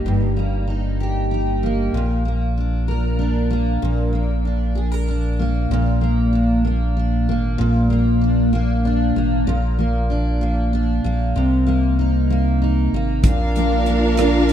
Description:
six-eight pop ballad; 64 BPM (dotted quarters); 6/8; straight; A4 = 438 Hz
picked steel-string acoustic guitar; accompaniment; 0.0-14.5 s; G2 to Bb4; -20 LUFS; equal; double-tracked left and right
warm sub bass; bass; 0.1-14.5 s; G1 to C2; -20 LUFS; equal
warm symphonic string section; sustained chords; 13.2-14.5 s; D4 to F5; -18 LUFS; right 1 dB
modern studio drum kit; drums; 13.2-14.5 s; hi-hat, kick drum, rim click; -20 LUFS; equal
light reverb, studio reverb; rough home demo mix; -17 LUFS; side -10 dB against mid
0.0-5.7 A section; 5.7-14.5 B section
0.0 Eb/G; 1.9 Bb; 11.4 Cm7; 13.2 Bb
| 0.06 1.00 | 1.94 2.88 | 3.83 4.77 | 5.71 6.65 | 7.59 8.54 | 9.48 10.42 | 11.36 12.30 | 13.24 14.18

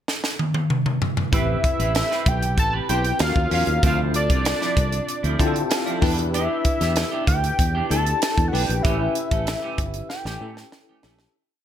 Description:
polished 1980s jazz-funk pop; 96 BPM; 4/4; straight; A4 = 440 Hz
crisp fusion drum kit; drums; 0.1-11.3 s; hi-hat, kick drum, snare drum, toms; -23 LUFS; equal
fat analog lead; melody; 1.3-11.0 s; D5 to A5; -25 LUFS; equal; chorus
bell-like tine electric piano; accompaniment; 1.3-11.4 s; C4 to A5; -28 LUFS; left 3 dB; fast stereo tremolo, ensemble chorus
semi-hollow electric guitar; riff; 1.3-11.2 s; F3 to C5; -31 LUFS; right 4 dB; lush chorus
fretless electric bass; bass; 1.3-11.3 s; G1 to D3; -24 LUFS; equal
light reverb, studio reverb; bright 1980s-style digital production; -19 LUFS; side -10 dB against mid
0.0-1.3 pickup bar; 1.3-11.3 pre-chorus
drum fill 0.1-1.3, 10.1-11.3; tine electric piano fill 5.1-6.3; fade-out 8.8-11.3
0.0 N.C.; 1.3 Am9; 3.2 Ebm9; 3.8 Dm9; 6.0 Em7; 8.8 A7
0.07 0.70 | 1.32 1.95 2.58 3.20 | 3.83 4.46 5.08 5.71 | 6.34 6.96 7.59 8.22 | 8.84 9.47 10.10 10.72

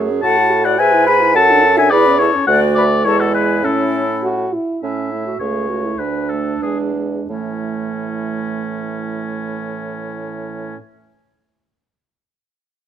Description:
quick classical-period movement for wind quintet; 87-108 BPM; 2/4; straight; A major; A4 = 440 Hz
mellow French horn; accompaniment; 0.0-10.8 s; E3 to A4; -24 LUFS; right 1 dB
mellow clarinet; accompaniment; 0.0-10.8 s; A3 to B4; -22 LUFS; right 8 dB
mellow bassoon; bass; 0.0-10.8 s; C#2 to A2; -22 LUFS; right 2 dB
silver concert flute; melody; 0.2-4.2 s; E4 to G#5; -20 LUFS; left 7 dB
warm oboe; second line; 0.2-10.8 s; C#4 to B5; -18 LUFS; left 3 dB
light reverb; close, detailed microphones; -14 LUFS; side -9 dB against mid
0.0-4.8 A section; 4.8-7.3 B section; 7.3-10.0 C section
slowing down 4.2-7.3
0.2 F#m/A; 0.8 E/G#; 1.4 D/F#; 1.9 C#m/E; 2.5 D; 3.1 E; 3.6 A; 5.4 A/C#; 6.0 Bm7/D; 6.6 E7; 7.3 A
| 0.24 0.80 | 1.36 1.92 | 2.48 3.05 | 3.64 4.23 | 4.82 5.40 | 5.99 6.62 | 7.30 7.98 | 8.65 9.32

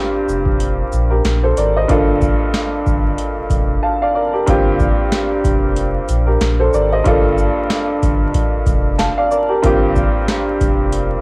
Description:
hip hop, boom-bap hip-hop; 93 BPM; 4/4; swing 57% on 16ths; A4 = 439 Hz
warm upright piano; accompaniment; 0.0-11.2 s; G2 to A5; -16 LUFS; equal; cassette tape, high-pass filter, low-pass filter
sub bass with octave; bass; 0.3-11.2 s; F1 to Bb1; -19 LUFS; equal; transformer saturation
booming analog drum machine; drums; 0.3-11.1 s; hi-hat, kick drum, shaker, snare drum; -18 LUFS; equal; cassette tape
light reverb; home recording on cassette, vinyl crackle; -13 LUFS; side -30 dB against mid
0.0-4.5 A section; 4.5-11.2 B section
drums muted 3.8-4.5
0.0 Fmadd9; 1.9 Gm9; 4.5 Fmadd9; 7.1 Gm9; 9.6 Fsus4
0.60 1.25 | 1.89 2.54 3.18 3.83 | 4.47 5.12 5.76 6.41 | 7.05 7.70 8.34 8.99 | 9.63 10.28 10.93

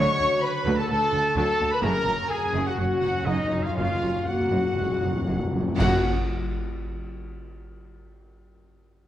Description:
cinematic, heroic adventure film score; 117-128 BPM; 4/4; straight; F# major; A4 = 439 Hz
rich symphonic violin section; melody; 0.0-6.1 s; D#5 to C#6; -35 LUFS; left 3 dB
bright oboe; second line; 0.0-6.0 s; D#5 to C#6; -34 LUFS; right 1 dB
hollow concert flute; second line; 0.0-6.1 s; D#5 to C#6; -33 LUFS; equal
warm symphonic violin section; second line; 0.0-6.1 s; D#5 to C#6; -37 LUFS; left 1 dB
rich symphonic viola section; accompaniment; 0.0-6.1 s; C#3 to F#4; -34 LUFS; right 1 dB
mellow French horn section; sustained chords; 0.0-6.0 s; D#4 to C#5; -28 LUFS; left 2 dB
concert harp; arpeggios; 0.0-7.8 s; F#2 to A#5; -36 LUFS; left 7 dB
bright trumpet section; stabs; 0.0-6.0 s; D#4 to C#5; -31 LUFS; equal
rich studio double bass section; bass; 0.0-6.1 s; F#1 to D2; -31 LUFS; right 3 dB
rich symphonic cello section; bass; 0.0-6.1 s; D2 to F#2; -30 LUFS; right 2 dB
timpani; percussion; 1.9-6.0 s; F#2; -31 LUFS; left 1 dB
clash cymbals and concert bass drum; percussion; 5.8-6.8 s; -30 LUFS; equal
moderate scoring stage reverb, RT60 1.4 s; worn, warbling old tape, cassette tape, warbly pitch drift; -22 LUFS; side -12 dB against mid
0.0-5.8 A section; 5.8-7.8 B section
slowing down 0.9-5.8; timpani fill 1.8-5.8; band accent 5.8-6.3
0.0 D; 1.8 F#
0.42 0.89 1.36 | 1.83 2.30 2.78 3.26 | 3.76 4.27 4.78 5.28 | 5.79 6.29 6.80 7.30

